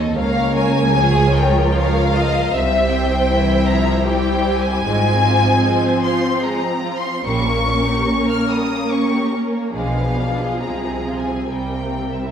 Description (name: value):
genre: classical, slow romantic movement for string orchestra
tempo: 58-80 BPM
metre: 3/4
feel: rubato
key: F minor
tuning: A4 = 440 Hz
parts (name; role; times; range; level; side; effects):
- warm studio violin section; melody; 0.0-12.3 s; Eb5 to F6; -22 LUFS; left 4 dB; none
- warm symphonic violin section; second line; 0.0-12.3 s; G3 to E5; -22 LUFS; equal; none
- warm symphonic viola section; accompaniment; 0.0-12.3 s; E3 to F4; -22 LUFS; right 1 dB; none
- rich symphonic cello section; bass; 0.0-12.3 s; C2 to C3; -22 LUFS; right 1 dB; none
- rich symphonic double bass section; bass; 0.0-12.3 s; Ab1 to Eb2; -23 LUFS; right 2 dB; none
room: wet scoring stage reverb, RT60 1.5 s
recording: heard from further back in the room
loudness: -15 LUFS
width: side -8 dB against mid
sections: 0.0-12.3 A section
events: none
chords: 0.2 Bbm/Db; 2.5 C; 4.8 Fm/Ab; 7.3 Gdim/Bb; 9.7 Bdim7; 10.6 Fm/C; 11.5 C7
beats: | 0.15 0.95 1.75 | 2.54 3.30 4.06 | 4.84 5.65 6.43 | 7.25 8.08 8.91 | 9.74 10.61 11.48